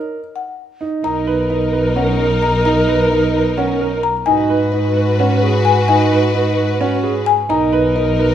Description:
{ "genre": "classical, minimalist pattern music", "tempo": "260 BPM (eighths)", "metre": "7/8", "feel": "straight", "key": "B major", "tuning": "A4 = 440 Hz", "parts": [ { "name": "marimba with medium mallets", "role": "melody", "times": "0.0-8.3 s", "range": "B4 to A#5", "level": "-20 LUFS", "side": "left 7 dB", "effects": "none" }, { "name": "warm grand piano", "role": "arpeggios", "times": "0.0-8.3 s", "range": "C#4 to B4", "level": "-18 LUFS", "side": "right 4 dB", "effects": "none" }, { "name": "wooden-headed alto flute", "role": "second line", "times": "1.0-8.3 s", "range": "A#4 to B4", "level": "-22 LUFS", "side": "equal", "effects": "none" }, { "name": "rich studio string section", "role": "sustained chords", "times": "1.0-8.3 s", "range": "D#4 to B4", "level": "-22 LUFS", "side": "left 4 dB", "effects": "none" }, { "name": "warm double bass", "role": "bass", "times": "1.0-8.3 s", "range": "B1 to G#2", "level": "-19 LUFS", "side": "right 1 dB", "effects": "none" } ], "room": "moderate scoring stage reverb, RT60 1.6 s", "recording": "none", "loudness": "-13 LUFS", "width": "side -10 dB against mid", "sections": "0.0-1.0 A section; 1.0-8.3 B section", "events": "none", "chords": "0.0 F#; 1.0 Bmaj7; 4.3 G#m7; 7.5 Bmaj7", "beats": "0.12 0.35 0.58 0.81 | 1.04 1.27 1.50 1.73 1.96 2.19 2.42 | 2.66 2.89 3.12 3.35 3.58 3.81 4.04 | 4.27 4.50 4.73 4.96 5.19 5.42 5.66 | 5.89 6.12 6.35 6.58 6.81 7.04 7.27 | 7.50 7.73 7.96 8.19" }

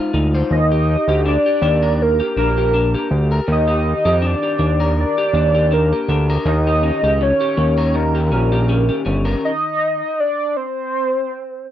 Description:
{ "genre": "indie pop", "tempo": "81 BPM", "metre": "4/4", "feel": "swing 55% on 16ths", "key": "Eb major", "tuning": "A4 = 440 Hz", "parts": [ { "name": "soft octave-layered synth lead", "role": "melody", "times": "0.0-11.7 s", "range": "Bb4 to Eb5", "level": "-19 LUFS", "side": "right 1 dB", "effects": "analog chorus, slapback echo" }, { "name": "electric guitar through a small old amp", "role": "accompaniment", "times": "0.0-10.0 s", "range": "Eb3 to C5", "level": "-22 LUFS", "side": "left 3 dB", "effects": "analog chorus, vibrato effect" }, { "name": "fat analog bass", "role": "bass", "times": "0.1-9.4 s", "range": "G1 to F2", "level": "-17 LUFS", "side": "equal", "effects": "none" } ], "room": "little or no reverb", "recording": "dry, close 1970s-style studio recording", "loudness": "-15 LUFS", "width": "side -11 dB against mid", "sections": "0.0-11.7 A section", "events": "stop 9.4-11.7", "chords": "0.0 Ab6; 0.5 Ebmaj7; 6.5 Eb7; 9.4 N.C.", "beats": "| 0.50 1.25 1.99 2.73 | 3.48 4.22 4.97 5.71 | 6.45 7.20 7.94 8.68 | 9.43 10.17 10.91 11.65" }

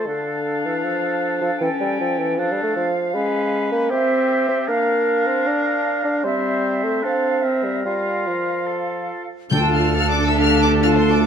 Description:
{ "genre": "classical", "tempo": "137-159 BPM", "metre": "4/4", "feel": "rubato", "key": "F major", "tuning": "A4 = 440 Hz", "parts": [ { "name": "bright clarinet", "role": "second line", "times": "0.0-11.3 s", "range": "C4 to F4", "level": "-26 LUFS", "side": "left 4 dB", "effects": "none" }, { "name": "bright flute section", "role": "second line", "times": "0.0-11.2 s", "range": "E5 to A5", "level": "-26 LUFS", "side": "right 1 dB", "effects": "none" }, { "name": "warm oboe", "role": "second line", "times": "0.0-11.3 s", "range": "G4 to C5", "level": "-28 LUFS", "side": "right 1 dB", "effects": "none" }, { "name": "mellow bassoon", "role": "accompaniment", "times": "0.0-11.3 s", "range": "D3 to D4", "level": "-22 LUFS", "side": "right 1 dB", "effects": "none" }, { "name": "rich chamber violin section", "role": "melody", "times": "9.5-11.3 s", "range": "C6 to G6", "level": "-24 LUFS", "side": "left 4 dB", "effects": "none" }, { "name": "rich symphonic violin section", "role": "second line", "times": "9.5-11.2 s", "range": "C5 to G5", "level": "-27 LUFS", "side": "equal", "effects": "none" }, { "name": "clear symphonic viola section", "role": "accompaniment", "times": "9.5-11.3 s", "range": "D4 to A4", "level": "-27 LUFS", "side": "left 2 dB", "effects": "none" }, { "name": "mellow French horn section", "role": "sustained chords", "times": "9.5-11.3 s", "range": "D4 to A4", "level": "-24 LUFS", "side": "left 10 dB", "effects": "none" }, { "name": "warm trombone section", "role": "sustained chords", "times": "9.5-11.3 s", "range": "D3 to A3", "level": "-22 LUFS", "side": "right 5 dB", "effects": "none" }, { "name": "mellow tuba", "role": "bass", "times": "9.5-11.3 s", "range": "D2", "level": "-23 LUFS", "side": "right 4 dB", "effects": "none" }, { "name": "rich symphonic cello section", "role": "bass", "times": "9.5-11.3 s", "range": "F4 to A4", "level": "-26 LUFS", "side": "left 1 dB", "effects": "none" }, { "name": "rich symphonic double bass section", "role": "bass", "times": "9.5-11.3 s", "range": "D2", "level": "-23 LUFS", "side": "right 1 dB", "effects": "none" }, { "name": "timpani", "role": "percussion", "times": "9.5-10.1 s", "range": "D3", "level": "-25 LUFS", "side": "left 2 dB", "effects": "none" } ], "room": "moderate scoring stage reverb, RT60 1.6 s", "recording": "none", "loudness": "-18 LUFS", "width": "side -7 dB against mid", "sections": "0.0-9.5 A section; 9.5-11.3 B section", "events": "none", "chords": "0.1 Dm; 1.6 A7; 2.4 Dm/F; 3.1 Db7/Ab; 3.9 C; 4.7 Bb; 6.2 C/G; 7.0 Dm7/C; 7.4 C7; 7.9 F; 9.5 Dm", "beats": "| 0.07 0.46 0.85 1.23 | 1.62 2.00 2.39 2.77 | 3.15 3.53 3.92 4.30 | 4.69 5.08 5.47 5.85 | 6.25 6.65 7.04 7.44 | 7.85 8.27 8.68 9.10 | 9.52 9.96 10.40 10.83 | 11.26" }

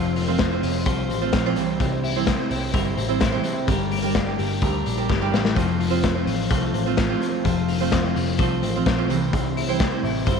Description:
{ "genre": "jangly indie pop", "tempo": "128 BPM", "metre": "4/4", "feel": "straight", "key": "F major", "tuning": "A4 = 440 Hz", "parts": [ { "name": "picked steel-string acoustic guitar", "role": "accompaniment", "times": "0.0-10.4 s", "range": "C3 to C5", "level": "-25 LUFS", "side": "right 13 dB", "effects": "none" }, { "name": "twelve-string electric guitar", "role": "arpeggios", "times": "0.0-10.4 s", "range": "C3 to C5", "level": "-26 LUFS", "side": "left 12 dB", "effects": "analog chorus, tape echo" }, { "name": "vintage muted picked electric bass", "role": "bass", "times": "0.0-10.4 s", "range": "F1 to D2", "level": "-27 LUFS", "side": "right 1 dB", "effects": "none" }, { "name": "raw garage drum kit", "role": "drums", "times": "0.2-10.4 s", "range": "hi-hat, kick drum, snare drum", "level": "-24 LUFS", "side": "left 3 dB", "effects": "none" } ], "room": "light reverb, studio ambience", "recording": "1960s-style stereo with parts hard left and right", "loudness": "-20 LUFS", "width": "side -6 dB against mid", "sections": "0.0-10.4 A section", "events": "drum fill 5.1-5.6", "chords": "0.0 F; 1.6 C; 3.7 Gm; 5.6 F; 9.1 C", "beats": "0.40 0.87 1.34 | 1.81 2.28 2.75 3.22 | 3.69 4.16 4.63 5.10 | 5.57 6.04 6.51 6.98 | 7.45 7.92 8.39 8.86 | 9.33 9.80 10.28" }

